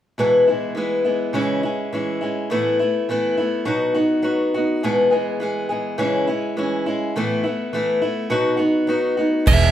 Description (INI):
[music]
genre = folk rock and heartland rock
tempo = 104 BPM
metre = 4/4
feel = straight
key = E major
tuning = A4 = 440 Hz
[part]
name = picked old ladder-braced acoustic guitar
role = accompaniment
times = 0.2-9.7 s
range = E2 to G#4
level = -18 LUFS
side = left 1 dB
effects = none
[part]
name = dark smooth lead guitar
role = melody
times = 9.5-9.7 s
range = E5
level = -18 LUFS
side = right 5 dB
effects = overdrive
[part]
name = picked electric bass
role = bass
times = 9.5-9.7 s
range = E1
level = -17 LUFS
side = right 2 dB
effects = none
[part]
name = soft brush drum kit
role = drums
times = 9.5-9.6 s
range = crash cymbal, kick drum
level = -15 LUFS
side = right 2 dB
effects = none
[sound]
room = light reverb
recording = band playing live in one room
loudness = -18 LUFS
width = side -11 dB against mid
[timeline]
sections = 0.2-9.5 A section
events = none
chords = 0.2 E; 1.4 C#m; 2.5 Asus2; 3.7 B; 4.8 E; 6.0 C#m; 7.2 Asus2; 8.3 B